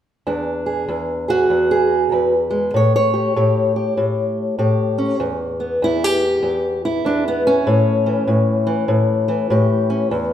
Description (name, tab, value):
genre	acoustic country blues, solo or duo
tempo	98 BPM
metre	4/4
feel	swing 63% on 8ths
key	unclear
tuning	A4 = 440 Hz
part	fingerpicked old ladder-braced acoustic guitar	solo	0.3-10.3 s	E2 to C#5	-16 LUFS	equal	none
room	wet recital hall reverb, RT60 1.6 s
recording	none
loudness	-16 LUFS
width	side -10 dB against mid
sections	0.3-5.2 A section; 5.2-10.3 B section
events	none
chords	0.3 E7; 2.7 A7; 5.2 E5; 7.7 A7